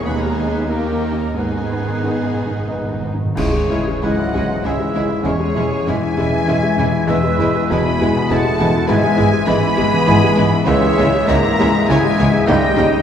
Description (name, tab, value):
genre	classical, romantic movement for piano and orchestra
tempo	86-104 BPM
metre	3/4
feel	rubato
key	G# minor, C# minor from 3.4 s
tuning	A4 = 440 Hz
part	rich studio violin section	melody	0.0-13.0 s	C#5 to B5	-26 LUFS	left 3 dB	none
part	warm grand piano	melody	0.0-13.0 s	C#2 to D#5	-19 LUFS	left 2 dB	none
part	bright large flute ensemble	second line	0.0-13.0 s	E4 to G#5	-25 LUFS	equal	none
part	rich studio violin section	second line	0.0-12.8 s	D#4 to D#5	-28 LUFS	left 1 dB	none
part	warm oboe	second line	0.0-13.0 s	A#4 to B5	-26 LUFS	right 2 dB	none
part	warm studio viola section	accompaniment	0.0-12.8 s	D#3 to C#4	-27 LUFS	right 1 dB	none
part	rich studio double bass section	bass	0.0-12.9 s	E1 to D#2	-25 LUFS	right 3 dB	none
part	warm studio cello section	bass	0.0-12.9 s	C#2 to C#3	-24 LUFS	right 2 dB	none
part	dark clarinet	second line	0.1-12.9 s	C#4 to E4	-28 LUFS	left 3 dB	none
part	mellow bassoon	accompaniment	0.1-12.9 s	G3 to B3	-27 LUFS	right 2 dB	none
part	mellow French horn section	sustained chords	0.1-13.0 s	C#3 to D#4	-25 LUFS	left 2 dB	none
part	timpani	percussion	1.4-3.3 s	G#2	-27 LUFS	equal	none
part	dark trombone section	sustained chords	3.4-13.0 s	D#3 to C#4	-26 LUFS	right 1 dB	none
part	clash cymbals and concert bass drum	percussion	3.4-4.6 s	none	-27 LUFS	right 1 dB	none
room	wet scoring stage reverb, RT60 1.6 s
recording	heard from further back in the room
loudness	-14 LUFS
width	side -8 dB against mid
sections	0.0-3.4 A section; 3.4-13.0 B section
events	timpani fill 1.4-3.4; band accent 3.4-4.0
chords	0.1 G#m/D#; 0.7 D#; 1.4 G#m; 3.4 C#m; 5.3 C#m/E; 7.1 E; 8.9 E/G#; 10.7 A#m7b5/C#; 12.5 D#7/C#